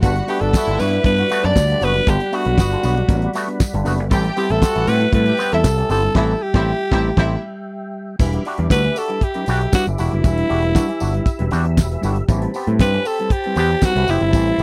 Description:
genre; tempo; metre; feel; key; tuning
disco; 118 BPM; 4/4; straight; unclear; A4 = 440 Hz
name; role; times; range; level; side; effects
clear studio string section; second line; 0.0-7.4 s; D4 to G5; -28 LUFS; equal; none
auto-wah clav; accompaniment; 0.0-14.6 s; G2 to G4; -29 LUFS; equal; none
mellow electric guitar; accompaniment; 0.0-14.6 s; G3 to D5; -28 LUFS; equal; none
percussive tonewheel organ; sustained chords; 0.0-14.6 s; G3 to E6; -32 LUFS; equal; chorus vibrato, slow rotary speaker
overdriven picked electric bass; bass; 0.0-14.6 s; E1 to A2; -22 LUFS; equal; none
damped 70s drum kit; drums; 0.0-14.6 s; crash cymbal, handclaps, hi-hat, kick drum, snare drum; -19 LUFS; equal; none
tambourine; percussion; 0.0-14.6 s; none; -40 LUFS; equal; none
raspy alto saxophone; melody; 0.3-14.6 s; E4 to D5; -22 LUFS; equal; none
room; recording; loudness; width
little or no reverb; dry, close 1970s-style studio recording; -18 LUFS; mono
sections
0.0-8.2 A section; 8.2-14.6 B section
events
band accent 6.2-8.2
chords
0.0 Gmaj7; 4.1 Am7; 8.2 Em7; 12.3 Am9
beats
| 0.03 0.54 1.05 1.56 | 2.07 2.58 3.09 3.60 | 4.11 4.62 5.13 5.64 | 6.15 6.67 7.18 7.69 | 8.20 8.71 9.22 9.73 | 10.24 10.75 11.26 11.77 | 12.28 12.79 13.31 13.82 | 14.33

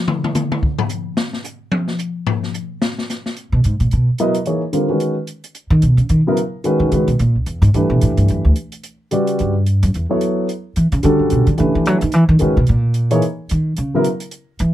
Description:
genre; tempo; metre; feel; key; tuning
modal jazz; 219 BPM; 4/4; swing 59% on 8ths; unclear; A4 = 443 Hz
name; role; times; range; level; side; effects
open jazz drum kit; drums; 0.1-14.7 s; hi-hat, kick drum, snare drum, toms; -22 LUFS; left 2 dB; none
upright bass; bass; 3.5-14.7 s; C#2 to F#3; -14 LUFS; equal; none
dark grand piano; accompaniment; 4.2-14.0 s; C#3 to D#5; -17 LUFS; equal; none
room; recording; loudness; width
little or no reverb; close, detailed microphones; -15 LUFS; side -13 dB against mid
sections
0.0-3.4 A section; 3.4-14.7 A section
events
drum solo 0.0-3.4; upright bass solo 3.4-14.7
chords
0.0 N.C.; 3.4 C#m11; 7.7 Em11; 12.1 C#m11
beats
| 0.08 0.35 0.62 0.90 | 1.17 1.45 1.72 1.99 | 2.27 2.54 2.81 3.09 | 3.36 3.63 3.91 4.18 | 4.46 4.73 5.00 5.28 | 5.55 5.83 6.10 6.38 | 6.65 6.92 7.20 7.47 | 7.75 8.02 8.29 8.57 | 8.84 9.12 9.39 9.66 | 9.94 10.21 10.49 10.76 | 11.04 11.31 11.58 11.86 | 12.13 12.40 12.68 12.95 | 13.23 13.50 13.78 14.05 | 14.32 14.60

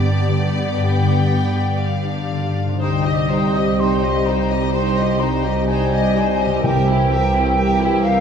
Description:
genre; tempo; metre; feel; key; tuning
classical; 58-66 BPM; 4/4; rubato; C minor; A4 = 441 Hz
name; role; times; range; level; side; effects
rich chamber violin section; melody; 0.0-8.2 s; C5 to G5; -29 LUFS; left 4 dB; none
rich studio violin section; second line; 0.0-8.2 s; G4 to Eb5; -26 LUFS; left 3 dB; none
rich studio viola section; accompaniment; 0.0-8.2 s; Eb4 to G4; -27 LUFS; right 1 dB; none
concert harp; arpeggios; 0.0-8.2 s; G2 to D5; -24 LUFS; left 4 dB; none
warm chamber cello section; bass; 0.0-8.2 s; C2 to B3; -23 LUFS; right 4 dB; none
warm symphonic double bass section; bass; 0.0-8.2 s; C2 to G2; -22 LUFS; right 2 dB; none
mellow hollow silver concert flute; second line; 2.8-8.2 s; F5 to Eb6; -22 LUFS; equal; none
mellow French horn section; sustained chords; 2.8-8.2 s; E3 to C5; -24 LUFS; left 4 dB; none
timpani; percussion; 6.6-8.0 s; C3; -24 LUFS; equal; none
room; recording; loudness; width
wet recital hall reverb, RT60 1.5 s; heard from further back in the room; -16 LUFS; side -7 dB against mid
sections
0.0-2.8 A section; 2.8-8.2 B section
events
none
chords
0.0 G; 2.8 Cm; 6.6 C7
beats
0.78 1.79 | 2.81 3.80 4.75 5.68 | 6.64 7.57

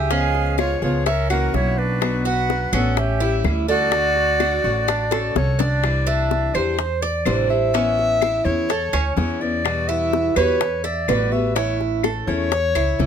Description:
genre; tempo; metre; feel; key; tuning
latin, Cuban son and guajira; 126 BPM; 4/4; straight; unclear; A4 = 440 Hz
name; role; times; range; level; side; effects
breathy clarinet; melody; 0.0-13.1 s; B4 to F#5; -23 LUFS; left 2 dB; none
breathy bright jazz flute; second line; 0.0-5.3 s; D4 to B4; -26 LUFS; right 9 dB; none
picked acoustic archtop guitar; accompaniment; 0.0-13.1 s; B2 to G#4; -26 LUFS; left 6 dB; none
Cuban tres; arpeggios; 0.0-13.1 s; C#4 to E5; -24 LUFS; right 8 dB; none
upright bass; bass; 0.0-13.1 s; A1 to E2; -23 LUFS; equal; none
bongos; percussion; 0.1-13.1 s; none; -25 LUFS; left 12 dB; none
claves; percussion; 0.6-13.0 s; none; -31 LUFS; left 6 dB; none
room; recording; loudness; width
light reverb; close, detailed microphones; -18 LUFS; side -8 dB against mid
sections
0.0-5.8 A section; 5.8-13.1 B section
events
drum fill 5.1-5.8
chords
0.1 C#7; 1.1 F#7/C#; 2.0 Bm; 3.0 A7; 3.9 Dmaj7; 5.8 Cadd9; 7.7 Aadd9; 9.7 Emadd9; 11.6 A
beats
| 0.10 0.58 1.06 1.54 | 2.02 2.49 2.97 3.45 | 3.93 4.40 4.88 5.36 | 5.84 6.31 6.79 7.27 | 7.75 8.22 8.70 9.18 | 9.65 10.13 10.61 11.09 | 11.56 12.04 12.52 13.00

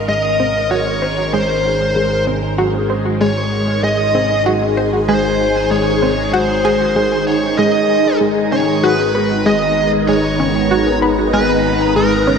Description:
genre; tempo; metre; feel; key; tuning
ambient, sequencer-driven space music; 96 BPM; 4/4; straight; G# minor from 7.6 s; A4 = 440 Hz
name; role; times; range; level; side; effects
phased string machine; sustained chords; 0.0-12.4 s; Eb3 to A#5; -17 LUFS; left 1 dB; ensemble chorus, phaser
analog drone; bass; 0.0-12.4 s; Ab1; -24 LUFS; equal; chorus
bubbling stepped-filter texture; texture; 0.0-7.6 s; Db4 to C6; -32 LUFS; right 4 dB; none
bluesy overdriven lead guitar; melody; 0.1-12.4 s; A#4 to Eb5; -18 LUFS; right 1 dB; distortion, tape echo
analog pluck; riff; 0.1-12.4 s; Ab3 to C5; -20 LUFS; equal; chorus, tape echo
room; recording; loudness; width
wet plate reverb, RT60 3.3 s; dreamy mix soaked in reverb; -13 LUFS; side -6 dB against mid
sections
0.0-7.6 A section; 7.6-12.4 B section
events
filter sweep on synth arpeggio sound 0.0-7.6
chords
0.0 Ab; 7.6 G#m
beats
| 0.09 0.71 1.33 1.96 | 2.58 3.21 3.83 4.46 | 5.08 5.71 6.33 6.96 | 7.58 8.21 8.84 9.46 | 10.09 10.71 11.34 11.96

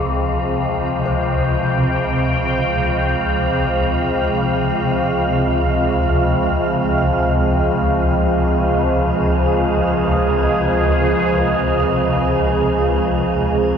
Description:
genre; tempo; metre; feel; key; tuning
dark ambient drone; free time; none; none; unclear; A4 = 441 Hz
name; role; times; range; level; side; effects
sweeping resonant pad; sustained chords; 0.0-13.8 s; F3 to G5; -18 LUFS; right 1 dB; chorus, shimmer reverb
gamelan-type bronze metallophone; arpeggios; 0.0-8.4 s; Ab4 to C5; -30 LUFS; left 1 dB; diffuse ambient delay, shimmer reverb
swarming drone; drone; 0.0-13.8 s; C#2 to C3; -19 LUFS; left 1 dB; built-in reverb
wind-like tuned noise texture; texture; 0.0-13.8 s; F5; -24 LUFS; right 2 dB; built-in reverb, shimmer reverb
room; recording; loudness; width
wet cathedral reverb, RT60 4.6 s; none; -15 LUFS; side -7 dB against mid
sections
0.0-13.8 A section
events
none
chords
0.0 Fmadd9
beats
free time

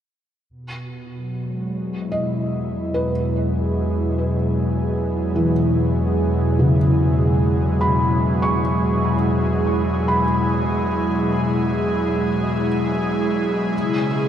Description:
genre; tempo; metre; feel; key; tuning
ambient; 72 BPM; 4/4; straight; E major; A4 = 440 Hz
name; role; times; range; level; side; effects
airy breathy pad; sustained chords; 0.5-14.3 s; B2 to G#4; -20 LUFS; equal; chorus
round analog bass; bass; 0.5-14.3 s; E2; -25 LUFS; equal; none
felt-muted upright piano; arpeggios; 2.1-13.8 s; C#3 to C#6; -23 LUFS; equal; tape echo
room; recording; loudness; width
wet cathedral reverb, RT60 6.1 s; in a vast, echoing space; -18 LUFS; side -9 dB against mid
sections
0.5-14.3 A section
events
fade-out on analog synth bass 0.5-14.3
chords
0.5 Eadd9; 13.7 C#m/E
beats
| 0.49 1.33 2.17 3.00 | 3.83 4.65 5.47 6.30 | 7.12 7.94 8.75 9.58 | 10.40 11.23 12.06 12.89 | 13.73

